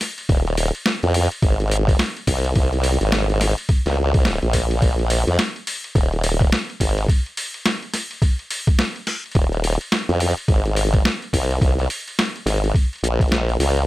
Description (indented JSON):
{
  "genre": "glitch hop",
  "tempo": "106 BPM",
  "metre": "4/4",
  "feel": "swing 61% on 16ths",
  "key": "unclear",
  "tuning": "A4 = 438 Hz",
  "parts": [
    { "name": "boom bap sampler-style drum kit", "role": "drums", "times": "0.0-13.9 s", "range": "hi-hat, snare drum", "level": "-24 LUFS", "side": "equal", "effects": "overdrive" },
    { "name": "formant-sweep wobble bass", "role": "bass", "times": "0.3-13.9 s", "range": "Eb1 to F2", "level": "-19 LUFS", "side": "equal", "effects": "chorus" },
    { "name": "electronic kick drum", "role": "drums", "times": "0.3-13.3 s", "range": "none", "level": "-17 LUFS", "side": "equal", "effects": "overdrive" }
  ],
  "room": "little or no reverb",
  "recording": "none",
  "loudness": "-18 LUFS",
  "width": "side -17 dB against mid",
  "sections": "0.0-13.9 A section",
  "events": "break 5.4-6.0",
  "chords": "none"
}